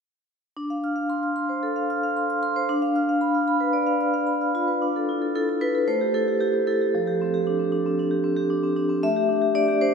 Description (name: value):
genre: classical, contemporary piece for solo vibraphone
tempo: 114 BPM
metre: 4/4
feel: straight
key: D dorian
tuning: A4 = 440 Hz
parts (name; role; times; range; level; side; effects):
- vibraphone with medium hard mallets; solo; 0.6-9.9 s; F3 to F6; -21 LUFS; equal; none
room: wet cathedral reverb, RT60 5.2 s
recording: recorded in a church or concert hall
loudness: -21 LUFS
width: side -6 dB against mid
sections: 0.6-4.8 A section; 4.8-9.9 B section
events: none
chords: 0.6 Dm7; 2.7 Dm6; 4.8 Dmadd9; 5.9 A5; 6.9 F69; 9.0 A7sus4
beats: | 0.57 1.10 1.63 2.17 | 2.69 3.21 3.74 4.28 | 4.82 5.35 5.88 6.41 | 6.93 7.46 7.98 8.51 | 9.03 9.55